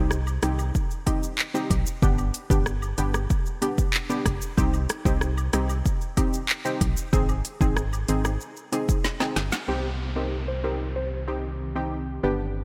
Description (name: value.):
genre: dancehall.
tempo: 94 BPM.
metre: 4/4.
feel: straight.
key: C harmonic minor.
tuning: A4 = 440 Hz.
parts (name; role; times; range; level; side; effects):
punchy chord stab; accompaniment; 0.0-12.4 s; B3 to Ab4; -32 LUFS; equal; chorus.
organ-like FM bass; bass; 0.0-12.6 s; F1 to C2; -30 LUFS; equal; none.
afro-pop drum kit; drums; 0.1-9.7 s; handclaps, hi-hat, kick drum, rim click, shaker, snare drum; -28 LUFS; equal; none.
woodblock and cabasa; percussion; 0.3-9.5 s; none; -44 LUFS; equal; none.
soft round pluck; melody; 9.7-12.3 s; Bb4 to C5; -36 LUFS; equal; chorus.
ethereal airy pad; sustained chords; 10.9-12.6 s; D3 to G4; -41 LUFS; equal; ensemble chorus, built-in reverb, sidechain pumping.
downlifter; sound effects; 9.7-12.6 s; none; -43 LUFS; equal; none.
room: light reverb, digital ambience.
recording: bright 1980s-style digital production.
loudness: -26 LUFS.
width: mono.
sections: 0.0-9.7 A section; 9.7-12.6 B section.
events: drum fill 9.0-9.7.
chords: 0.0 Cm; 2.0 G; 4.6 Cm; 7.1 Ab; 9.7 Cm.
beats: 0.11 0.75 1.39 | 2.02 2.66 3.30 3.94 | 4.58 5.22 5.85 6.49 | 7.13 7.77 8.41 9.04 | 9.68 10.32 10.96 11.60 | 12.24.